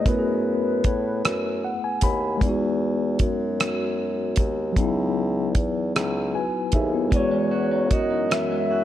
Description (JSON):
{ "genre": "slow six-eight R&B", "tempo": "51 BPM (dotted quarters)", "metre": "6/8", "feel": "straight", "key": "E major", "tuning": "A4 = 441 Hz", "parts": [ { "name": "soft octave-layered synth lead", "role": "melody", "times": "0.0-2.0, 7.2-8.8 s", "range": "B4 to E5", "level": "-26 LUFS", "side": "left 2 dB", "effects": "chorus" }, { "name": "mellow tine electric piano", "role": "accompaniment", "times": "0.0-8.8 s", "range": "F#3 to B5", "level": "-26 LUFS", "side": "left 2 dB", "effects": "medium stereo tremolo" }, { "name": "mellow bassoon", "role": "bass", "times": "0.0-8.8 s", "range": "C#2 to A2", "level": "-26 LUFS", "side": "equal", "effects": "none" }, { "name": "damped 70s drum kit", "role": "drums", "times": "0.1-8.5 s", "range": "hi-hat, kick drum, rim click", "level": "-24 LUFS", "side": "equal", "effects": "none" }, { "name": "electric guitar at the edge of break-up", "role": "second line", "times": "7.1-8.8 s", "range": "E3 to F#4", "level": "-30 LUFS", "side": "right 4 dB", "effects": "none" } ], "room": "studio ambience", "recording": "dark, warm production", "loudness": "-21 LUFS", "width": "side -12 dB against mid", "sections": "0.0-8.8 A section", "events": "tine electric piano fill 1.2-2.4, 5.9-7.1", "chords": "0.1 F#m11; 2.4 Emaj9; 4.8 C#m11; 7.1 Emaj9" }